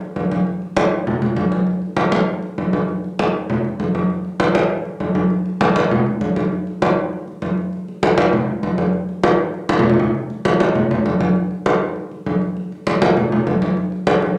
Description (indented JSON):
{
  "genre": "latin",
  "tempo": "198 BPM",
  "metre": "4/4",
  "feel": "straight",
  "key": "none",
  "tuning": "none",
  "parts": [
    { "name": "congas", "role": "percussion", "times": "0.0-14.3 s", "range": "none", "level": "-19 LUFS", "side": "equal", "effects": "none" }
  ],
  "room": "wet studio reverb, RT60 0.5 s",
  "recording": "none",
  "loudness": "-19 LUFS",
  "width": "mono",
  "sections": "0.0-5.3 A section; 5.3-14.4 B section",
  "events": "drum fill 9.7-10.1, 14.2",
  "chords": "none"
}